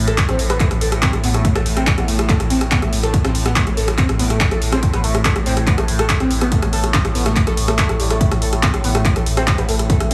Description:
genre	driving peak-time techno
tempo	142 BPM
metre	4/4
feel	straight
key	A minor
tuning	A4 = 441 Hz
part	saturated sub bass	bass	0.0-10.1 s	A1	-25 LUFS	equal	sidechain pumping, low-pass filter
part	overtone-sweeping drone	drone	0.0-10.1 s	A2	-27 LUFS	equal	chorus, built-in reverb, sidechain pumping
part	overdriven synth lead	riff	0.1-10.1 s	G3 to A4	-25 LUFS	equal	phaser, subtle chorus, sidechain pumping, tape echo
part	punchy analog drum machine	drums	0.1-10.1 s	handclaps, hi-hat, rim click	-23 LUFS	equal	overdrive, sidechain pumping on hats
part	electronic kick drum	drums	0.2-10.0 s	none	-21 LUFS	equal	none
room	light reverb, digital ambience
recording	heavily compressed radio sound, multiband compression, studio reverb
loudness	-17 LUFS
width	mono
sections	0.0-10.1 A section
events	none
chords	0.0 Am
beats	0.18 0.60 1.02 | 1.45 1.87 2.29 2.71 | 3.14 3.56 3.98 4.41 | 4.83 5.25 5.67 6.09 | 6.52 6.94 7.36 7.79 | 8.21 8.63 9.05 9.47 | 9.90

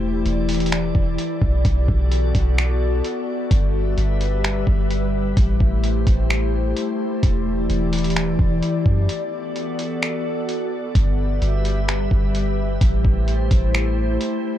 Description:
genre	hip hop, atmospheric cloud-rap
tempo	129 BPM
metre	4/4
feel	half-time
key	E minor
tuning	A4 = 440 Hz
part	glassy FM pad	sustained chords	0.0-14.6 s	E3 to E5	-23 LUFS	left 2 dB	ensemble chorus, built-in reverb, sidechain pumping
part	soft 808-style bass	bass	0.0-14.2 s	E1 to F#2	-21 LUFS	equal	none
part	lo-fi sampler-style drum kit	drums	0.3-14.3 s	finger snaps, hi-hat, kick drum	-20 LUFS	equal	overdrive
room	little or no reverb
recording	dark, warm production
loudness	-18 LUFS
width	side -12 dB against mid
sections	0.0-14.6 A section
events	break 9.1-10.0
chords	0.0 Em7; 1.6 Bm7; 3.5 G6; 5.4 Am7; 7.2 Em7; 9.1 Bm7; 11.0 G6; 12.8 Am7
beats	0.25 0.72 1.19 | 1.65 2.12 2.58 3.04 | 3.51 3.98 4.44 4.91 | 5.37 5.84 6.30 6.77 | 7.23 7.70 8.16 8.63 | 9.09 9.56 10.02 10.49 | 10.95 11.42 11.88 12.35 | 12.81 13.28 13.74 14.21

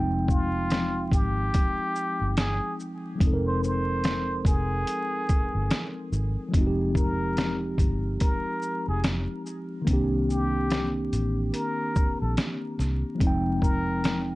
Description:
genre	lo-fi hip hop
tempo	72 BPM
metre	4/4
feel	swing 61% on 16ths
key	F minor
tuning	A4 = 441 Hz
part	mellow tine electric piano	accompaniment	0.0-14.4 s	Eb3 to G5	-29 LUFS	equal	slow stereo tremolo
part	vintage muted fingered electric bass	bass	0.0-14.4 s	F1 to C2	-29 LUFS	equal	none
part	trumpet with plunger mute	melody	0.3-14.3 s	F4 to C5	-32 LUFS	equal	tape echo
part	trip hop sampler-style drum kit	drums	0.3-14.3 s	hi-hat, kick drum, shaker, snare drum	-25 LUFS	equal	none
room	light reverb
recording	vinyl crackle, nothing above 10.5 kHz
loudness	-24 LUFS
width	side -19 dB against mid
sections	0.0-6.5 A section; 6.5-14.4 B section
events	none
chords	0.0 Fm9; 9.9 Cm9; 13.2 Fm9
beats	0.70 1.53 2.37 | 3.20 4.04 4.87 5.70 | 6.54 7.37 8.20 9.04 | 9.87 10.70 11.54 12.37 | 13.20 14.04

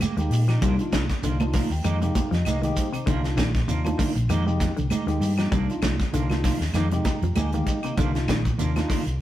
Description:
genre	afrobeat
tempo	98 BPM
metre	4/4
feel	swing 55% on 16ths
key	C minor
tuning	A4 = 439 Hz
part	semi-hollow electric guitar	arpeggios	0.0-9.1 s	C3 to G3	-30 LUFS	left 4 dB	none
part	semi-hollow electric guitar	stabs	0.0-9.1 s	Eb3 to G4	-31 LUFS	right 4 dB	harmonic tremolo
part	tight funk drum kit	drums	0.0-9.2 s	hi-hat, kick drum, snare drum	-28 LUFS	equal	none
part	claves	percussion	0.0-8.9 s	none	-41 LUFS	left 2 dB	none
part	congas	percussion	0.0-8.9 s	none	-32 LUFS	right 4 dB	none
part	shekere	percussion	0.0-9.2 s	none	-36 LUFS	right 2 dB	none
part	bright tine electric piano	accompaniment	0.2-9.0 s	Ab3 to Bb5	-31 LUFS	equal	fast stereo tremolo
part	hollow-body short-scale fingered electric bass	bass	0.2-9.2 s	Bb1 to Bb2	-25 LUFS	equal	none
room	moderate stone room reverb, RT60 1.2 s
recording	rough rehearsal-room recording, warm saturation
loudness	-21 LUFS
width	side -13 dB against mid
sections	0.0-9.2 A section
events	tine electric piano fill 1.2-3.1, 6.8-8.0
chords	0.0 Fm11; 0.6 Cm11; 1.9 Fm11; 3.1 Cm11; 4.3 Fm11; 5.5 Cm11; 6.8 Fm11; 8.0 Cm11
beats	0.01 | 0.62 1.24 1.85 2.46 | 3.08 3.69 4.30 4.91 | 5.53 6.14 6.75 7.37 | 7.98 8.59 9.20

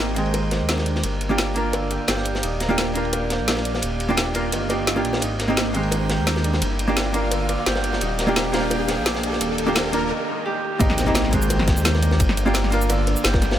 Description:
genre	liquid drum and bass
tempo	172 BPM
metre	4/4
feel	straight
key	Eb major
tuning	A4 = 441 Hz
part	hollow-body jazz guitar	accompaniment	0.0-13.6 s	Eb3 to Bb4	-24 LUFS	right 2 dB	digital delay
part	airy breathy pad	sustained chords	0.0-13.6 s	G4 to G5	-31 LUFS	equal	chorus
part	Celtic harp	arpeggios	0.0-13.6 s	D3 to Eb5	-29 LUFS	right 1 dB	low-pass filter, digital delay
part	smooth synth bass	bass	0.0-13.6 s	Eb1 to Eb2	-25 LUFS	equal	none
part	riser, swell and impact	sound effects	0.1-12.2 s	none	-33 LUFS	left 1 dB	none
part	crunchy breakbeat drum kit	drums	0.1-13.6 s	ride cymbal, snare drum	-29 LUFS	left 1 dB	high-pass filter on cymbals, high-pass filter on snare, high-pass filter on room
part	drum and bass drum kit	drums	0.2-13.5 s	cabasa, hi-hat, snare drum	-26 LUFS	equal	none
part	bongos	percussion	0.3-9.4, 11.5-13.6 s	none	-31 LUFS	left 2 dB	none
part	electronic kick drum	drums	10.8-13.4 s	none	-20 LUFS	equal	none
room	light reverb, studio reverb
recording	none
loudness	-19 LUFS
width	side -11 dB against mid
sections	0.0-10.8 A section; 10.8-13.6 B section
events	build-up 0.0-10.8; filter sweep on harp 0.0-10.8; break 10.1-10.8; swell 10.1-10.8; drop 10.8-13.6; impact 10.8-12.2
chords	0.0 Abmaj9; 1.0 Gm7; 2.4 Ebmaj9; 5.2 Abmaj9; 6.6 Gm7; 8.0 Ebmaj9; 10.8 Abmaj9; 12.2 Gm7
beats	0.34 0.69 | 1.04 1.39 1.73 2.08 | 2.43 2.78 3.13 3.48 | 3.83 4.18 4.53 4.87 | 5.22 5.57 5.92 6.27 | 6.62 6.97 7.32 7.66 | 8.01 8.36 8.71 9.06 | 9.41 9.76 10.11 10.46 | 10.80 11.15 11.50 11.85 | 12.20 12.55 12.90 13.25

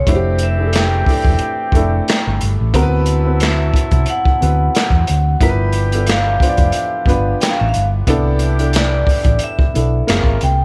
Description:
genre	R&B, neo-soul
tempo	90 BPM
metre	4/4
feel	swing 55% on 16ths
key	C major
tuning	A4 = 441 Hz
part	vibraphone with hard mallets	melody	0.0-10.6 s	B4 to G5	-23 LUFS	equal	none
part	dark upright piano	accompaniment	0.0-10.6 s	F3 to D5	-24 LUFS	equal	none
part	clear horn section	stabs	0.1-10.4 s	C#3 to A4	-29 LUFS	equal	none
part	hollow-body short-scale fingered electric bass	bass	0.1-10.6 s	E1 to E2	-18 LUFS	equal	none
part	crunchy breakbeat drum kit	drums	0.1-10.6 s	handclaps, hi-hat, kick drum, snare drum	-19 LUFS	equal	none
room	small room ambience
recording	none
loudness	-15 LUFS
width	mono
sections	0.0-10.6 A section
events	none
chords	0.1 Fmaj9; 2.7 D13; 5.4 G13; 8.1 Cmaj9; 10.1 F#maj9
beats	| 0.07 0.74 1.40 2.07 | 2.74 3.40 4.07 4.74 | 5.40 6.07 6.74 7.40 | 8.07 8.74 9.40 10.07

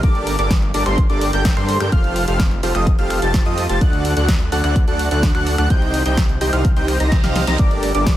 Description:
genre	EDM, festival progressive house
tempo	127 BPM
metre	4/4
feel	straight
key	G minor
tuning	A4 = 440 Hz
part	wide unison lead	arpeggios	0.0-8.1 s	C6 to Bb6	-24 LUFS	equal	wide subtle chorus, sidechain pumping, tape echo
part	dense compressed supersaw	riff	0.0-8.1 s	D4 to Bb5	-21 LUFS	right 1 dB	sidechain pumping, tape echo
part	detuned saw bass	bass	0.0-8.2 s	F1 to G2	-21 LUFS	equal	sidechain pumping
part	electronic kick drum	drums	0.0-8.2 s	none	-17 LUFS	equal	none
part	house drum kit	drums	0.0-8.2 s	finger snaps, hi-hat, snare drum	-25 LUFS	equal	none
part	reverse cymbal	sound effects	7.0-7.6 s	none	-31 LUFS	right 6 dB	none
room	little or no reverb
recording	none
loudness	-15 LUFS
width	side -13 dB against mid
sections	0.0-8.2 A section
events	reverse cymbal 7.0-7.6; drum fill 7.1-7.6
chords	0.0 Gmadd9; 1.9 Fadd9; 3.8 D; 5.7 Cm; 7.6 Gmadd9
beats	| 0.03 0.51 0.98 1.45 | 1.92 2.40 2.87 3.34 | 3.81 4.29 4.76 5.23 | 5.70 6.17 6.65 7.12 | 7.59 8.06

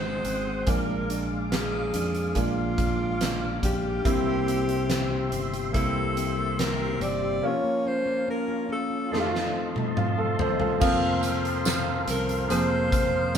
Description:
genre	pop ballad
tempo	71 BPM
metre	4/4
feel	straight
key	unclear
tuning	A4 = 441 Hz
part	breathy alto saxophone	melody	0.0-13.3 s	F4 to D5	-29 LUFS	equal	none
part	bright upright piano	accompaniment	0.0-13.4 s	Bb2 to C5	-29 LUFS	right 1 dB	none
part	tonewheel organ	sustained chords	0.0-13.4 s	Ab3 to Eb6	-35 LUFS	equal	overdrive, chorus vibrato, slow rotary speaker
part	fingerpicked plugged-in steel-string acoustic guitar	arpeggios	0.0-13.4 s	F2 to Ab4	-32 LUFS	left 4 dB	none
part	fingered electric bass	bass	0.0-13.4 s	F1 to F2	-32 LUFS	right 1 dB	none
part	huge arena drum kit	drums	0.2-13.4 s	crash cymbal, hi-hat, kick drum, snare drum, toms	-29 LUFS	equal	none
part	tambourine	percussion	10.8-13.4 s	none	-38 LUFS	right 6 dB	none
room	moderate studio reverb, RT60 0.9 s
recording	band playing live in one room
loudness	-23 LUFS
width	side -8 dB against mid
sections	0.0-10.8 A section; 10.8-13.4 B section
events	drum fill 9.1-10.8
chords	0.0 Ab7; 0.7 Bb7; 4.1 C7; 7.4 Bbm; 9.1 F7; 10.8 Fsus4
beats	| 0.68 1.52 2.37 3.21 | 4.05 4.90 5.75 6.59 | 7.43 8.28 9.12 9.97 | 10.81 11.66 12.51 13.35

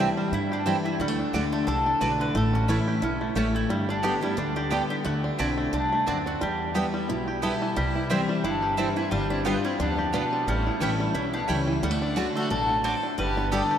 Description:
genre	bluegrass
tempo	177 BPM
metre	4/4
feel	swing 55% on 8ths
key	G major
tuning	A4 = 441 Hz
part	mandolin	melody	0.0-13.8 s	C4 to C5	-30 LUFS	equal	slapback echo
part	picked steel-string acoustic guitar	accompaniment	0.0-13.8 s	E2 to G4	-28 LUFS	left 2 dB	none
part	bluegrass banjo	arpeggios	0.0-13.8 s	D3 to G4	-31 LUFS	right 2 dB	slapback echo
part	mandolin	stabs	0.0-13.6 s	A3 to A5	-33 LUFS	right 4 dB	none
part	upright bass	bass	0.0-13.6 s	G1 to G2	-32 LUFS	equal	none
part	clear fiddle	second line	7.4-13.8 s	G3 to A4	-34 LUFS	left 4 dB	slapback echo
room	wet cathedral reverb, RT60 7.3 s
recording	in a vast, echoing space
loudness	-23 LUFS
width	side -9 dB against mid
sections	0.0-13.8 A section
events	none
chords	0.0 C; 1.0 D; 2.4 A; 3.7 G; 5.1 D7; 6.4 Em; 7.8 C; 9.1 G7; 10.5 A7; 11.8 D; 13.2 G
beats	0.33 0.66 | 1.00 1.34 1.68 2.01 | 2.35 2.69 3.03 3.36 | 3.70 4.04 4.38 4.72 | 5.06 5.39 5.73 6.07 | 6.41 6.75 7.09 7.43 | 7.77 8.11 8.44 8.78 | 9.12 9.46 9.80 10.14 | 10.47 10.81 11.15 11.49 | 11.83 12.17 12.51 12.85 | 13.18 13.52

